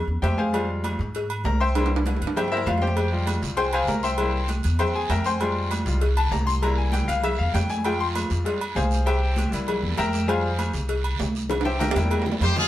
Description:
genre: latin, salsa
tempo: 197 BPM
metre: 4/4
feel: straight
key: unclear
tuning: A4 = 440 Hz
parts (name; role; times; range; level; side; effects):
- upright bass; bass; 0.0-12.7 s; C2 to Ab2; -25 LUFS; equal; none
- congas; percussion; 0.1-12.6 s; none; -32 LUFS; right 1 dB; none
- bright concert grand piano; accompaniment; 0.2-12.4 s; F3 to C6; -26 LUFS; left 2 dB; none
- cowbell and bongos; percussion; 0.2-12.7 s; none; -31 LUFS; left 3 dB; none
- timbales and agogo bells; percussion; 0.2-12.7 s; none; -31 LUFS; right 4 dB; none
- guiro; percussion; 3.0-12.7 s; none; -37 LUFS; right 5 dB; none
- brilliant trumpet section; melody; 12.4-12.7 s; F4 to C5; -22 LUFS; left 1 dB; none
room: wet studio reverb, RT60 0.8 s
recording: band playing live in one room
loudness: -21 LUFS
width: side -13 dB against mid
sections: 0.0-12.7 A section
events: grand piano solo 0.0-12.7; drum fill 1.8-3.0, 11.5-12.7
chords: 0.0 C7; 5.4 Fmadd9; 6.6 C7; 7.8 Fmadd9; 9.1 C7; 10.3 Fmadd9; 11.5 C7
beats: 0.23 | 0.53 0.84 1.14 1.45 | 1.75 2.05 2.36 2.66 | 2.97 3.27 3.58 3.88 | 4.19 4.49 4.80 5.10 | 5.41 5.71 6.01 6.32 | 6.62 6.93 7.23 7.54 | 7.84 8.15 8.45 8.76 | 9.06 9.37 9.67 9.98 | 10.28 10.59 10.89 11.19 | 11.50 11.80 12.11 12.41

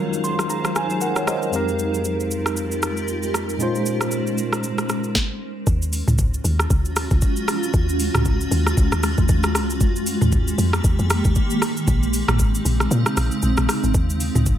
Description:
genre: amapiano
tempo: 116 BPM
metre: 4/4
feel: swing 58% on 16ths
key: Eb dorian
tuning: A4 = 441 Hz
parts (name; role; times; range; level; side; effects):
- tine electric piano; accompaniment; 0.0-5.2 s; F2 to C6; -23 LUFS; right 1 dB; medium stereo tremolo, low-pass filter
- granular cloud pad; sustained chords; 0.0-14.6 s; Db3 to F5; -24 LUFS; equal; built-in reverb, sidechain pumping, low-pass filter
- smooth R&B drum kit; drums; 0.1-14.6 s; hi-hat, kick drum, rim click, shaker, snare drum, toms; -22 LUFS; equal; none
- deep log drum bass; bass; 5.7-14.6 s; Ab1 to Bb2; -21 LUFS; equal; none
room: light reverb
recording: none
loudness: -18 LUFS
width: side -11 dB against mid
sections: 0.0-5.7 A section; 5.7-14.6 B section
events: tine electric piano fill 0.0-1.5; drop 5.7-14.6; kick muted 12.9-13.9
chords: 0.0 Ebm11; 1.5 Fm11; 3.6 Bbm11; 5.7 Ebm11; 9.8 Fm11; 11.9 Bbm11; 13.9 Ebm11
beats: 0.50 1.01 | 1.53 2.05 2.56 3.08 | 3.60 4.12 4.63 5.15 | 5.67 6.19 6.70 7.22 | 7.74 8.26 8.77 9.29 | 9.81 10.32 10.84 11.36 | 11.88 12.39 12.91 13.43 | 13.95 14.46

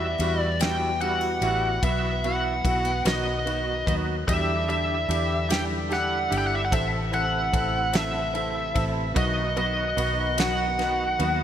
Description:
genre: six-eight pop ballad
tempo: 49 BPM (dotted quarters)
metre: 6/8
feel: straight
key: E minor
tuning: A4 = 440 Hz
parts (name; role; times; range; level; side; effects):
- biting lead guitar; melody; 0.0-11.4 s; D#5 to G5; -26 LUFS; equal; overdrive, digital delay
- clear grand piano; accompaniment; 0.0-11.4 s; G3 to A4; -30 LUFS; right 3 dB; ensemble chorus
- tonewheel organ; sustained chords; 0.0-11.4 s; C3 to F#4; -33 LUFS; left 1 dB; overdrive, slow rotary speaker
- picked steel-string acoustic guitar; arpeggios; 0.0-11.4 s; E3 to F#4; -36 LUFS; left 6 dB; none
- vintage muted fingered electric bass; bass; 0.0-11.4 s; G1 to E2; -29 LUFS; equal; none
- loose indie drum kit; drums; 0.2-11.4 s; kick drum, ride cymbal, snare drum; -30 LUFS; equal; none
room: moderate lush hall reverb, RT60 2.7 s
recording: bright 1980s-style digital production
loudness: -22 LUFS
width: side -10 dB against mid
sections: 0.0-11.4 A section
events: none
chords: 0.0 Emadd9; 1.8 Bsus4; 3.0 B; 4.3 Em7; 6.7 Am; 9.2 B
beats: 0.60 | 1.83 3.05 | 4.27 5.50 | 6.72 7.94 | 9.16 10.38

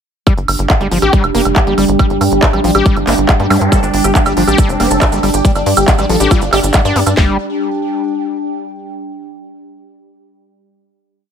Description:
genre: psychedelic trance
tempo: 139 BPM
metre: 4/4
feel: straight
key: unclear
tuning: A4 = 441 Hz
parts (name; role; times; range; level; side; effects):
- evolving wavetable pad; sustained chords; 0.7-7.2 s; G3; -21 LUFS; right 2 dB; phaser, built-in reverb, sidechain pumping
- screaming distorted acid line; riff; 0.3-7.4 s; F3 to G4; -18 LUFS; left 2 dB; distortion, chorus, auto-pan, sidechain pumping, digital delay
- garage drum kit; drums; 0.3-7.3 s; handclaps, kick drum, snare drum; -11 LUFS; equal; none
- techno drum kit; drums; 0.3-7.2 s; handclaps, hi-hat, woodblock; -17 LUFS; right 2 dB; none
- warbly tape-like pad; texture; 0.5-8.9 s; D4 to G5; -19 LUFS; right 1 dB; chorus, built-in reverb, sidechain pumping
- tight sequencer bass; bass; 0.4-7.4 s; F1 to G2; -17 LUFS; equal; none
- zap; sound effects; 3.5-3.6 s; none; -22 LUFS; equal; none
- supersaw stab; melody; 3.7-7.3 s; D4 to A4; -19 LUFS; left 1 dB; phaser, sidechain pumping, digital delay
- maracas; percussion; 3.7-7.2 s; none; -25 LUFS; right 6 dB; none
- vowel-sweep wobble bass; second line; 4.7-6.1 s; G3 to C4; -30 LUFS; left 2 dB; none
room: light reverb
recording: none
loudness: -10 LUFS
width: side -8 dB against mid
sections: 0.3-7.2 drop; 7.2-8.9 final chord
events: drop 0.3-7.2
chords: 0.3 G5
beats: | 0.27 0.70 1.13 1.56 | 1.99 2.42 2.86 3.29 | 3.72 4.15 4.58 5.01 | 5.45 5.88 6.31 6.74 | 7.17 7.61 8.04 8.47

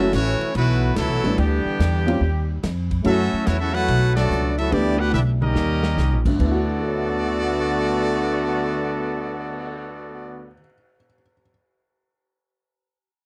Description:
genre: jazz, big band swing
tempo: 144 BPM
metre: 4/4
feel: swing 67% on 8ths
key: D major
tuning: A4 = 440 Hz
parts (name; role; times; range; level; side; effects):
- brilliant trumpet section; melody; 0.0-10.5 s; F#3 to F#5; -28 LUFS; equal; slapback echo
- warm trombone section; second line; 0.0-10.5 s; D3 to F#4; -27 LUFS; equal; none
- warm baby grand piano; accompaniment; 0.0-11.5 s; D2 to A6; -27 LUFS; equal; none
- upright bass; bass; 0.0-10.6 s; F#1 to F#2; -25 LUFS; equal; none
- vintage drum kit; drums; 0.1-9.7 s; crash cymbal, cymbal swell, hi-hat, kick drum, ride cymbal, snare drum, toms; -32 LUFS; equal; none
room: little or no reverb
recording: dry, close 1970s-style studio recording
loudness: -21 LUFS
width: mono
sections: 0.0-6.4 A section; 6.4-9.7 B section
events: band accent 4.1; drum fill 5.1-6.0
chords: 0.0 F#m7; 0.5 B7sus4; 1.4 D13sus4; 2.2 Ebadd9; 3.0 F#m7; 3.9 B7sus4; 4.7 A9sus4; 5.6 Eb6; 6.4 D69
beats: 0.12 0.54 0.96 | 1.38 1.79 2.21 2.63 | 3.05 3.46 3.88 4.30 | 4.72 5.13 5.55 5.97 | 6.39 6.81 7.22 7.64 | 8.06 8.48 8.90 9.32

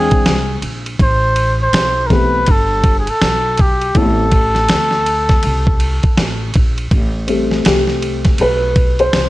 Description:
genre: hip hop, jazz-hop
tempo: 81 BPM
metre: 4/4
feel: swing 62% on 16ths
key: A minor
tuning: A4 = 440 Hz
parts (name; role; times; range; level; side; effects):
- trumpet with cup mute; melody; 0.0-6.6 s; G4 to C5; -16 LUFS; equal; none
- dark baby grand piano; accompaniment; 0.0-9.3 s; E3 to G5; -16 LUFS; left 2 dB; none
- upright bass; bass; 0.0-9.3 s; G1 to D2; -19 LUFS; equal; none
- dusty soul sampler-style drum kit; drums; 0.1-9.3 s; hi-hat, kick drum, ride cymbal, snare drum; -15 LUFS; equal; vintage 12-bit sampler grit
room: small room ambience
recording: none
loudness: -12 LUFS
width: side -17 dB against mid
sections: 0.0-6.9 A section; 6.9-9.3 B section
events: grand piano solo 6.9-9.3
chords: 0.0 E7alt; 1.0 Am9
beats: 0.25 | 0.99 1.73 2.47 3.21 | 3.95 4.70 5.43 6.18 | 6.92 7.66 8.40 9.14

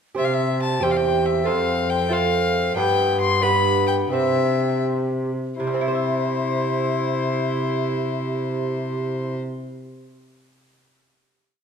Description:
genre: classical, renaissance-style consort dance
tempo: 79-93 BPM (dotted quarters)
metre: 6/8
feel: straight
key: C major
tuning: A4 = 440 Hz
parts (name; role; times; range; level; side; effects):
- lute; accompaniment; 0.1-10.2 s; E2 to E5; -30 LUFS; right 5 dB; none
- warm violin; melody; 0.2-9.4 s; C5 to C6; -25 LUFS; left 6 dB; none
- mellow hollow tenor recorder; second line; 0.2-9.4 s; G4 to A4; -26 LUFS; right 4 dB; none
- warm bassoon; accompaniment; 0.2-9.3 s; B3 to E4; -27 LUFS; left 2 dB; none
- dark cello; bass; 0.2-9.4 s; E2 to C3; -27 LUFS; right 1 dB; none
room: wet recital hall reverb, RT60 1.6 s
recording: minimal, uncompressed stereo recording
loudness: -19 LUFS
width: side -6 dB against mid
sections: 0.2-5.6 A section; 5.6-8.6 final chord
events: slowing down 2.1-5.6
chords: 0.2 C; 1.5 F; 2.8 G; 4.1 C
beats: | 0.18 0.83 | 1.48 2.13 | 2.77 3.44 | 4.13 4.84 | 5.59 6.34 | 7.10 7.85

